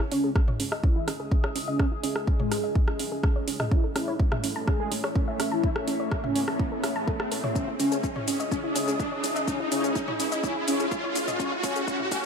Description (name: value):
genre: melodic techno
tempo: 125 BPM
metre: 4/4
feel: straight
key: C# minor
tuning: A4 = 442 Hz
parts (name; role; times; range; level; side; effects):
- dark analog pad; sustained chords; 0.5-12.3 s; A3 to E5; -37 LUFS; equal; chorus, sidechain pumping
- soft round pluck; arpeggios; 0.0-12.2 s; C#4 to A5; -33 LUFS; right 1 dB; chorus, sidechain pumping, dub echo
- house drum kit; drums; 0.0-12.2 s; hi-hat, rim click, shaker, toms; -32 LUFS; equal; none
- riser; sound effects; 0.1-12.3 s; none; -34 LUFS; right 1 dB; none
- warbly tape-like pad; texture; 0.1-12.3 s; A3 to D#6; -35 LUFS; equal; chorus, built-in reverb, phaser, sidechain pumping
- mellow synth brass; melody; 0.1-12.3 s; G#3 to G#4; -32 LUFS; left 2 dB; chorus, sidechain pumping, dub echo
- swelling detuned saw bass; bass; 0.1-12.2 s; G#1 to A2; -42 LUFS; equal; none
- electronic kick drum; drums; 0.4-12.2 s; none; -25 LUFS; equal; none
room: light reverb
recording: high-pass filter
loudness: -24 LUFS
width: side -6 dB against mid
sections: 0.0-12.3 A section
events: build-up 0.0-12.3; filter sweep on synth arpeggio sound 0.0-12.3; filter sweep on analog polysynth 0.0-12.3; filter sweep 0.0-12.3; riser 0.1-12.3; drum fill 7.6-12.3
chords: 0.0 C#madd9; 3.7 A; 7.6 C#madd9; 11.4 A